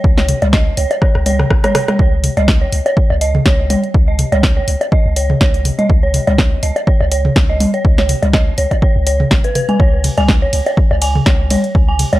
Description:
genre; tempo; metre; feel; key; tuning
minimal techno; 123 BPM; 4/4; swing 55% on 16ths; unclear; A4 = 440 Hz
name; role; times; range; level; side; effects
punchy sub bass; bass; 0.0-12.2 s; G#1 to C#2; -17 LUFS; equal; sidechain pumping
electronic kick drum; drums; 0.0-11.9 s; none; -13 LUFS; equal; overdrive
dark detuned synth bell; riff; 0.2-12.2 s; B4 to G#5; -20 LUFS; right 1 dB; chorus, sidechain pumping, tape echo
punchy analog drum machine; drums; 0.2-12.2 s; hi-hat, ride cymbal, rim click, snare drum; -19 LUFS; equal; overdrive
electronic toms and bongos; percussion; 0.3-12.2 s; none; -18 LUFS; equal; overdrive, tape echo
room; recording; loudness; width
digital ambience; dry, gritty hardware recording; -11 LUFS; side -16 dB against mid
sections
0.0-12.2 A section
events
drum fill 1.0-2.0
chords
0.0 C#5

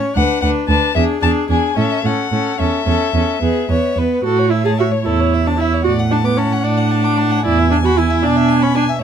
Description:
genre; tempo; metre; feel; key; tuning
quick classical-period movement for string quartet; 75 BPM (dotted quarters); 6/8; rubato; A major; A4 = 442 Hz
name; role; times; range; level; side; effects
clear violin; second line; 0.0-9.0 s; G#4 to D6; -22 LUFS; left 4 dB; none
clear viola; accompaniment; 0.0-8.8 s; B3 to G#4; -18 LUFS; right 1 dB; none
warm violin; melody; 0.2-9.0 s; C#5 to A5; -22 LUFS; left 8 dB; none
rich cello; bass; 0.2-8.9 s; D2 to B2; -17 LUFS; right 3 dB; none
room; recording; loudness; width
little or no reverb; close, detailed microphones; -13 LUFS; side -8 dB against mid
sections
0.0-4.3 A section; 4.3-9.0 B section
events
none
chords
0.2 Bm/D; 1.0 E7; 1.8 A; 2.6 A/E; 3.4 E; 4.3 A; 5.9 D/A; 7.5 E7

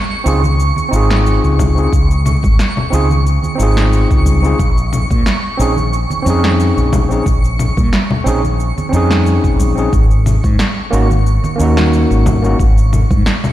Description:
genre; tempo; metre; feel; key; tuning
sunset chillout; 90 BPM; 4/4; swing 54% on 16ths; Db major; A4 = 440 Hz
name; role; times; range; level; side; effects
twinkling granular texture; texture; 0.0-13.5 s; Db6; -24 LUFS; right 1 dB; built-in reverb
overdriven tine electric piano; accompaniment; 0.2-12.6 s; Bb3 to Ab4; -18 LUFS; moving between left 3 dB and right 3 dB; auto-pan, low-pass filter, tape echo
mellow fretless electric bass; bass; 0.3-13.2 s; Ab1 to Bb2; -13 LUFS; equal; none
electronic cabasa, snare drum and congas; drums; 0.3-13.5 s; none; -20 LUFS; left 1 dB; overdrive
congas; percussion; 0.4-13.2 s; none; -24 LUFS; right 3 dB; none
electronic kick drum; drums; 1.6-13.2 s; none; -15 LUFS; equal; overdrive
room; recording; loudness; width
light reverb; played on a big sound system in a bare room, stone room reverb; -11 LUFS; side -14 dB against mid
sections
0.0-13.5 A section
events
none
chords
0.0 Dbmaj9; 4.6 Bbm11; 9.9 Ab7sus4

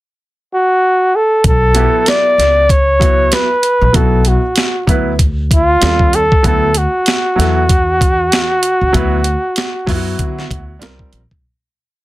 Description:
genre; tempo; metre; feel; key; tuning
hip hop, jazz-hop; 96 BPM; 4/4; swing 58% on 16ths; B minor; A4 = 440 Hz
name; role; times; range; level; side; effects
breathy flugelhorn; melody; 0.5-10.8 s; E#4 to D5; -13 LUFS; equal; none
upright bass; bass; 1.4-11.4 s; A#1 to D3; -16 LUFS; equal; none
boom bap sampler-style drum kit; drums; 1.4-11.4 s; hi-hat, kick drum, snare drum; -15 LUFS; equal; none
warm upright piano; accompaniment; 1.7-11.2 s; F#3 to B4; -19 LUFS; equal; none
room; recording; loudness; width
moderate booth ambience, RT60 0.2 s; dense, heavily limited modern master; -10 LUFS; side -17 dB against mid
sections
0.0-1.4 pickup bar; 1.4-11.4 A section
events
fade-out 8.9-11.4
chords
0.0 N.C.; 1.4 Bm9; 5.8 D#add9; 6.4 Dadd9; 10.8 C5

